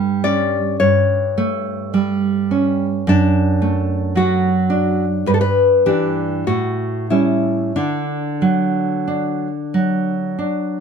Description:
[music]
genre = romantic duo for nylon-string guitar and classical guitar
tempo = 45-56 BPM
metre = 4/4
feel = rubato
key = D major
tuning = A4 = 441 Hz
[part]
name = nylon-string guitar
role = melody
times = 0.0-10.8 s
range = D4 to E5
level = -19 LUFS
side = left 4 dB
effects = none
[part]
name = nylon-string guitar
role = accompaniment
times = 0.0-10.8 s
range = F#2 to D4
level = -17 LUFS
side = right 3 dB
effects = none
[sound]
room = light reverb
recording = none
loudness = -16 LUFS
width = side -6 dB against mid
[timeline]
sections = 0.0-10.8 A section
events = none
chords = 0.0 A7/G; 3.1 D/F#; 5.3 Em7/G; 6.5 A7; 7.8 D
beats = 0.80 1.95 | 3.08 4.16 5.27 6.47 | 7.75 9.07 10.39

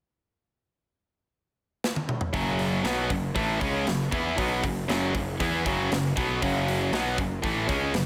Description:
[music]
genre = heavy metal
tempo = 118 BPM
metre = 4/4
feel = straight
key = F# minor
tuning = A4 = 440 Hz
[part]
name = tight metal drum kit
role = drums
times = 1.8-8.1 s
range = hi-hat, kick drum, snare drum, toms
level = -33 LUFS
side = equal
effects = none
[part]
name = distorted electric guitar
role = riff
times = 2.3-8.1 s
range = F#2 to E4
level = -32 LUFS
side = equal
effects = distortion
[part]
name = tight distorted guitar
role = riff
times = 2.3-8.1 s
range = F#2 to E4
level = -30 LUFS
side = equal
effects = distortion
[part]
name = fuzz picked electric bass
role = bass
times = 2.3-8.1 s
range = F#1 to E2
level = -35 LUFS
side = equal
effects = overdrive
[sound]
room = little or no reverb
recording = none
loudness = -27 LUFS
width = mono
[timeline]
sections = 0.3-2.3 A section; 2.3-8.1 B section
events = drum fill 1.8-2.3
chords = 0.3 N.C.; 2.3 F#m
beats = | 0.30 0.81 1.32 1.83 | 2.34 2.85 3.36 3.87 | 4.38 4.89 5.40 5.91 | 6.41 6.92 7.43 7.94

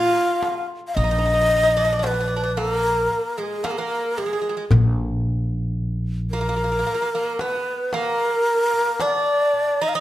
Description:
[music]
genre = Turkish makam ensemble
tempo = 112 BPM (eighths)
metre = 10/8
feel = straight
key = Bb makam hicaz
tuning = A4 = 440 Hz
[part]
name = breathy bright low ney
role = melody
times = 0.0-10.0 s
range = Ab4 to F5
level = -21 LUFS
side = left 1 dB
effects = none
[part]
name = Greek bouzouki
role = second line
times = 0.0-10.0 s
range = Ab3 to F4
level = -26 LUFS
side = right 3 dB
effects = none
[part]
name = darbuka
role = percussion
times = 0.4-9.7 s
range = none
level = -23 LUFS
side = left 2 dB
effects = none
[part]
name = upright bass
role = bass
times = 1.0-6.8 s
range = Bb1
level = -24 LUFS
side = equal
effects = none
[sound]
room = moderate recital hall reverb, RT60 1.3 s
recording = none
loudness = -19 LUFS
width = side -14 dB against mid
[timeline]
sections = 0.0-10.0 A section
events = none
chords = none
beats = 0.43 0.96 1.50 2.04 2.57 3.11 3.64 4.18 | 4.72 5.25 5.79 6.32 6.86 7.40 7.93 8.47 9.00 9.54

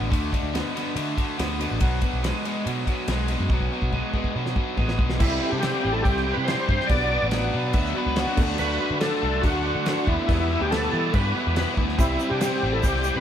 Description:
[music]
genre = classic rock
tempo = 142 BPM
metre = 4/4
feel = straight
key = unclear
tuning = A4 = 442 Hz
[part]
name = picked twelve-string acoustic guitar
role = accompaniment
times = 0.0-13.2 s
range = E2 to G4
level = -36 LUFS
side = left 4 dB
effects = none
[part]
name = cranked stack guitar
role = riff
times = 0.0-13.2 s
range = E2 to D4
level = -30 LUFS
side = right 6 dB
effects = overdrive, spring reverb
[part]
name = crunchy overdriven guitar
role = riff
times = 0.0-13.2 s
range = B2 to E4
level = -31 LUFS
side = left 8 dB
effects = none
[part]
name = picked electric bass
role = bass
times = 0.0-13.2 s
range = A1 to E3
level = -28 LUFS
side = equal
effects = none
[part]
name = damped 70s drum kit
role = drums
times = 0.1-13.0 s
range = crash cymbal, kick drum, ride cymbal, snare drum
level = -26 LUFS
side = equal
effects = none
[part]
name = overdriven tonewheel organ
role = melody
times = 5.2-13.2 s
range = E4 to D5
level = -26 LUFS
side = equal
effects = chorus vibrato, slow rotary speaker
[part]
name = smooth overdriven lead guitar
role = second line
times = 5.2-13.2 s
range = B3 to B4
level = -34 LUFS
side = right 2 dB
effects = none
[part]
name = warm upright piano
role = accompaniment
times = 5.2-13.2 s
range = A3 to D5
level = -37 LUFS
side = right 3 dB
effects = none
[part]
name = string machine, cellos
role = sustained chords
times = 5.2-13.2 s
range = G3 to C5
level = -39 LUFS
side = left 1 dB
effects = none
[part]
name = overdriven electric guitar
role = second line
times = 7.3-8.5 s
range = F#4 to E5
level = -32 LUFS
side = left 3 dB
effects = none
[part]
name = egg shaker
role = percussion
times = 12.0-13.1 s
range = none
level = -40 LUFS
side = right 9 dB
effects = none
[sound]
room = moderate stone room reverb, RT60 1.1 s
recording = band playing live in one room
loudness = -21 LUFS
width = side -9 dB against mid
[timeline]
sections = 0.0-5.2 A section; 5.2-13.2 B section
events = drum fill 3.5-5.2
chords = 0.0 D; 1.8 Bm; 5.2 C; 6.9 Bm; 8.4 D; 10.3 Em; 12.0 C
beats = | 0.11 0.54 0.96 1.38 | 1.81 2.23 2.66 3.08 | 3.51 3.93 4.36 4.78 | 5.21 5.63 6.05 6.48 | 6.90 7.32 7.75 8.17 | 8.59 9.02 9.44 9.86 | 10.29 10.71 11.14 11.56 | 11.98 12.41 12.83

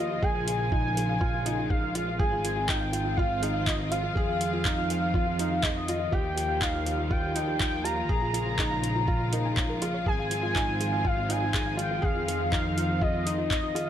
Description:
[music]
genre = piano and strings electronica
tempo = 122 BPM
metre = 4/4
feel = straight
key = Ab major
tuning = A4 = 438 Hz
[part]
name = warm velvety synth lead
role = melody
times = 0.0-13.9 s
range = Eb5 to Bb5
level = -31 LUFS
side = equal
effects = chorus
[part]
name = warm studio string section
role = sustained chords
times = 0.0-13.9 s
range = Db3 to F4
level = -35 LUFS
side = left 2 dB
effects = sidechain pumping
[part]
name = soft round pluck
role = arpeggios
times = 0.0-13.9 s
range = F4 to Ab5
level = -39 LUFS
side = right 4 dB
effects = chorus, sidechain pumping, digital delay
[part]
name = felt-muted upright piano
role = riff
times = 0.0-13.9 s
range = Eb4 to Ab4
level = -34 LUFS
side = left 1 dB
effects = digital delay
[part]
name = rich chamber double bass section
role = bass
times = 0.0-13.9 s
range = Ab1 to F2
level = -32 LUFS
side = right 1 dB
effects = sidechain pumping
[part]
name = electronic kick drum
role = drums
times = 0.2-13.6 s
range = none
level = -29 LUFS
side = equal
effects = none
[part]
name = deep house drum kit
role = drums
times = 0.5-13.9 s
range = handclaps, hi-hat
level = -32 LUFS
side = equal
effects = overdrive
[sound]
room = light reverb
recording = none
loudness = -25 LUFS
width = side -10 dB against mid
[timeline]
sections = 0.0-13.9 A section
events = none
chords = 0.2 Bbm7; 2.2 Ab6; 4.2 Fm7; 6.1 Ebadd9; 8.1 Bbm7; 10.1 Ab6; 12.0 Fm7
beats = | 0.23 0.72 1.21 1.70 | 2.19 2.69 3.18 3.67 | 4.16 4.65 5.15 5.64 | 6.13 6.62 7.11 7.61 | 8.10 8.59 9.08 9.57 | 10.06 10.56 11.05 11.54 | 12.03 12.52 13.02 13.51

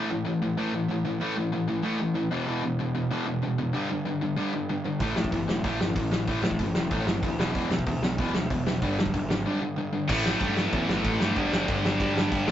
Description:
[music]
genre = punk rock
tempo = 189 BPM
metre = 4/4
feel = straight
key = unclear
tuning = A4 = 442 Hz
[part]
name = sludgy distorted guitar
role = riff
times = 0.0-12.5 s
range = E2 to A3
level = -30 LUFS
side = right 3 dB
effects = overdrive
[part]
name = tight distorted guitar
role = riff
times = 0.0-12.5 s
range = E2 to A3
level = -30 LUFS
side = left 4 dB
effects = distortion
[part]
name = fuzz picked electric bass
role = bass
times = 5.0-12.5 s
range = E1 to A2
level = -31 LUFS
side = equal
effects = overdrive
[part]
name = loose indie drum kit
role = drums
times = 5.0-12.5 s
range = crash cymbal, hi-hat, kick drum, snare drum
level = -28 LUFS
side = equal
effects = none
[part]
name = heavy high-gain guitar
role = riff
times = 10.1-12.5 s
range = G2 to A3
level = -29 LUFS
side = equal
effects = distortion
[sound]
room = moderate small room reverb, RT60 0.5 s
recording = rough rehearsal-room recording, tube saturation, nothing above 7.8 kHz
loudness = -24 LUFS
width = side -11 dB against mid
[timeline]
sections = 0.0-10.1 A section; 10.1-12.5 B section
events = break 9.5-10.1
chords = 0.0 A5; 2.3 E5; 3.7 G5; 5.0 A5; 7.4 E5; 8.8 G5; 10.1 A5; 11.4 G5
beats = 0.25 0.57 0.89 | 1.20 1.52 1.83 2.15 | 2.47 2.79 3.10 3.42 | 3.74 4.05 4.37 4.69 | 5.01 5.32 5.64 5.96 | 6.28 6.59 6.91 7.23 | 7.55 7.87 8.19 8.50 | 8.82 9.14 9.46 9.78 | 10.09 10.41 10.73 11.05 | 11.36 11.68 12.00 12.31

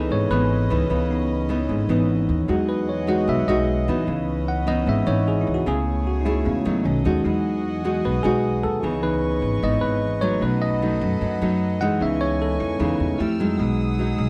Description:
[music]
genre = bossa nova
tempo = 151 BPM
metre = 4/4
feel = straight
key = E major, C# minor from 8.8 s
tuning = A4 = 441 Hz
[part]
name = bell-like tine electric piano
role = accompaniment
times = 0.0-14.3 s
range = D#3 to F#5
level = -27 LUFS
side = equal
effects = none
[part]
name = nylon-string guitar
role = accompaniment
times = 0.0-14.3 s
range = F#2 to G#4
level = -26 LUFS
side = equal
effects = none
[part]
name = warm chamber string section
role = sustained chords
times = 0.0-14.3 s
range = A3 to F6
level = -36 LUFS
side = equal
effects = none
[part]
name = upright bass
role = bass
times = 0.0-14.3 s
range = G#1 to F#2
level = -28 LUFS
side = equal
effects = none
[sound]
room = studio reverb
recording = dry, close 1970s-style studio recording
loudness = -22 LUFS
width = mono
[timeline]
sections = 0.0-8.8 A section; 8.8-14.3 A section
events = tine electric piano solo 0.0-14.3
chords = 0.0 C#m9; 2.5 Emaj9; 4.1 C#m9; 5.7 Amaj7/C#; 6.9 B7; 7.2 Emaj9; 8.8 C#m9; 10.4 B7; 12.0 C#m9; 13.2 Fmaj9; 13.6 Emaj9/B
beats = 0.11 0.50 | 0.90 1.30 1.69 2.09 | 2.49 2.88 3.28 3.68 | 4.08 4.47 4.87 5.27 | 5.66 6.06 6.46 6.85 | 7.25 7.65 8.04 8.44 | 8.84 9.23 9.63 10.03 | 10.42 10.82 11.21 11.61 | 12.01 12.40 12.80 13.20 | 13.59 13.99

